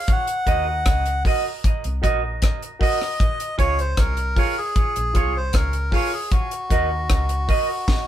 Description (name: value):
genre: roots reggae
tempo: 77 BPM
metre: 4/4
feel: straight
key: unclear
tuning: A4 = 440 Hz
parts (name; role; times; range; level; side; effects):
- melodica; melody; 0.0-8.1 s; Gb4 to Gb5; -25 LUFS; left 1 dB; none
- deep reggae drum kit; drums; 0.1-8.1 s; hi-hat, kick drum, rim click, snare drum; -21 LUFS; equal; none
- clean electric guitar; accompaniment; 0.5-7.7 s; F4 to Eb5; -26 LUFS; right 6 dB; spring reverb, tape echo
- dark baby grand piano; stabs; 0.5-7.7 s; F4 to Gb5; -31 LUFS; left 2 dB; none
- vintage muted fingered electric bass; bass; 0.5-7.5 s; Bb1 to Eb2; -25 LUFS; equal; none
room: light reverb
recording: band playing live in one room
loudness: -19 LUFS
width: side -12 dB against mid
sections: 0.0-8.1 A section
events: drum fill 7.9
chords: 0.1 Ebm; 3.2 Db; 6.3 Ebm